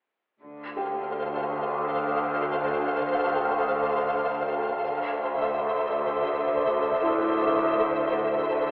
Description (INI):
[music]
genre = cinematic, suspense film score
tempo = free time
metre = none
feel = none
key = D minor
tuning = A4 = 440 Hz
[part]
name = flickering grainy texture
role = sustained chords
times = 0.8-8.7 s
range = A4 to F5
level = -29 LUFS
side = equal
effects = built-in reverb
[part]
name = rich symphonic cello section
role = bass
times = 0.4-8.7 s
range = D3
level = -36 LUFS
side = equal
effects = none
[part]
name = rich symphonic double bass section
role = bass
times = 0.4-8.7 s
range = D2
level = -43 LUFS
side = equal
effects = none
[part]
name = overtone-sweeping drone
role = drone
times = 0.9-8.7 s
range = D2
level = -33 LUFS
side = equal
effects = chorus, built-in reverb, phaser
[part]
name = felt-muted upright piano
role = texture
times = 0.8-8.7 s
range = E4 to G5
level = -37 LUFS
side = equal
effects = none
[sound]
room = wet concert hall reverb, RT60 2.3 s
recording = heard from further back in the room, telephone sound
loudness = -26 LUFS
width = mono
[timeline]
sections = 0.4-8.7 A section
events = none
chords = 0.4 Dm7; 4.8 Am/D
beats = free time